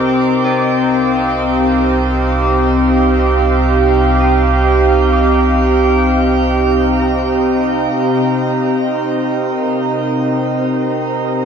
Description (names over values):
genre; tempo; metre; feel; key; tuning
ambient; 64 BPM; 4/4; straight; C minor; A4 = 435 Hz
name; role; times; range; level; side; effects
warm analog pad; sustained chords; 0.0-11.4 s; C3 to D6; -13 LUFS; right 1 dB; chorus
concert harp; arpeggios; 0.0-8.4 s; G4 to Eb6; -25 LUFS; left 1 dB; ping-pong delay
round analog bass; bass; 0.0-7.9 s; C2; -18 LUFS; right 1 dB; none
room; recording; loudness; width
wet shimmer reverb, RT60 7.5 s; dark, warm production; -12 LUFS; side -7 dB against mid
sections
0.0-7.9 A section; 7.9-11.4 B section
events
fade-in on analog synth bass 0.0-7.9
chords
0.0 Cm7